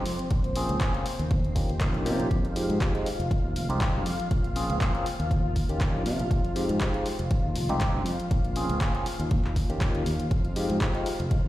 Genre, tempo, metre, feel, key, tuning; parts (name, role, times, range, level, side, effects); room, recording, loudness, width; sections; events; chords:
filtered disco house; 120 BPM; 4/4; swing 54% on 16ths; F minor; A4 = 440 Hz
barky tine electric piano; accompaniment; 0.0-11.1 s; Ab3 to Ab4; -32 LUFS; equal; medium stereo tremolo, phaser, vintage 12-bit sampler grit, sidechain pumping, low-pass filter
string machine, full ensemble; sustained chords; 0.0-11.5 s; C4 to F5; -35 LUFS; left 2 dB; ensemble chorus, vintage 12-bit sampler grit, sidechain pumping, low-pass filter
overdriven fingered electric bass; bass; 0.0-11.5 s; F1 to C3; -30 LUFS; equal; tube saturation, sidechain pumping, low-pass filter
punchy analog drum machine; drums; 0.1-11.4 s; handclaps, hi-hat; -36 LUFS; equal; sidechain pumping on hats, sidechain pumping on cymbals
tambourine; percussion; 0.1-11.5 s; barely audible
electronic kick drum; drums; 0.3-11.4 s; -27 LUFS; equal
light reverb; played on a big sound system in a bare room, stone room reverb; -24 LUFS; side -15 dB against mid
0.0-11.5 A section
0.3 Bbm9; 1.1 Eb9; 2.3 Fm9; 4.3 Bbm9; 5.1 Eb9; 6.3 Fm9; 8.3 Bbm9; 9.1 Eb9; 10.3 Fm9